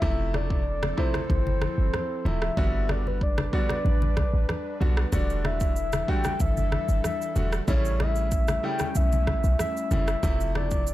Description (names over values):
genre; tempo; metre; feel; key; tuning
afrobeats; 94 BPM; 4/4; straight; unclear; A4 = 440 Hz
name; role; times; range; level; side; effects
soft octave-layered synth lead; melody; 0.0-10.9 s; B4 to G5; -30 LUFS; left 1 dB; chorus, ping-pong delay
clear grand piano; accompaniment; 0.0-10.8 s; C3 to F#4; -33 LUFS; right 1 dB; none
airy breathy pad; sustained chords; 0.2-10.9 s; E3 to B4; -36 LUFS; equal; chorus
clean 808-style bass; bass; 0.0-10.9 s; D1 to B1; -26 LUFS; equal; none
afro-pop drum kit; drums; 0.0-10.9 s; kick drum, rim click, shaker; -28 LUFS; equal; none
congas; percussion; 0.0-10.7 s; none; -33 LUFS; left 2 dB; none
room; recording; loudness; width
little or no reverb; none; -23 LUFS; side -15 dB against mid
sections
0.0-10.9 A section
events
break 0.0-5.1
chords
0.0 Fmaj7; 2.6 Gmaj7; 5.1 Em11; 7.7 A7; 10.2 Fmaj7